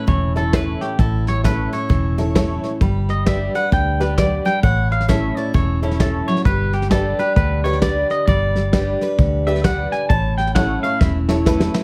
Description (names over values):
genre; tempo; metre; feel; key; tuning
honky-tonk and classic country; 132 BPM; 4/4; swing 62% on 8ths; A mixolydian; A4 = 437 Hz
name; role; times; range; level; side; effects
twangy electric guitar; second line; 0.0-11.2 s; E4 to A5; -26 LUFS; equal; tape echo
picked steel-string acoustic guitar; accompaniment; 0.0-11.8 s; A2 to C#5; -26 LUFS; equal; none
vintage muted fingered electric bass; bass; 0.1-11.7 s; E1 to D2; -23 LUFS; equal; none
soft brush drum kit; drums; 0.1-11.8 s; hi-hat, kick drum, snare drum; -22 LUFS; equal; none
honky-tonk upright piano; accompaniment; 0.4-11.8 s; E4 to D5; -27 LUFS; equal; none
room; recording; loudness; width
light reverb; none; -18 LUFS; mono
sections
0.0-11.8 A section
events
clean electric guitar solo 0.0-11.8; drum fill 11.0-11.8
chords
0.0 A; 2.8 G; 4.6 A; 6.5 G; 10.1 A